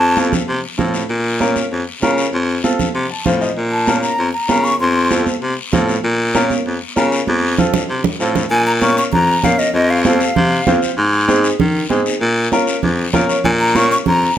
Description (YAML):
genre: latin, cumbia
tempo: 194 BPM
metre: 4/4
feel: straight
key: Bb harmonic minor, Bb minor from 8.5 s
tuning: A4 = 439 Hz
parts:
  - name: breathy hollow jazz flute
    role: melody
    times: 0.0-0.2, 3.7-5.1, 8.5-10.8, 13.4-14.4 s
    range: Eb5 to Db6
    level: -17 LUFS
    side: left 1 dB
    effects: none
  - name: raspy baritone saxophone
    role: bass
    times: 0.0-14.3 s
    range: F2 to Eb3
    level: -17 LUFS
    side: left 1 dB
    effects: none
  - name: clear upright piano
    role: accompaniment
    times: 0.2-14.0 s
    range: C4 to Bb5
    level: -19 LUFS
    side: equal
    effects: none
  - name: congas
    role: percussion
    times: 0.2-14.2 s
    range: none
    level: -20 LUFS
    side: right 3 dB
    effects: none
  - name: guiro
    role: percussion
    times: 0.2-14.4 s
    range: none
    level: -27 LUFS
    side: left 6 dB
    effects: none
room: light reverb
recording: none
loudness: -13 LUFS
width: side -10 dB against mid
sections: 0.0-8.5 A section; 8.5-14.4 B section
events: upright piano fill 3.0-3.6, 13.0-13.4; drum fill 7.3-8.5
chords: 0.0 F; 1.1 Bbm; 2.3 F; 3.6 Bbm; 4.8 F; 6.0 Bbm; 7.3 F; 8.5 Bbm; 9.7 F; 11.0 Ab; 12.2 Bbm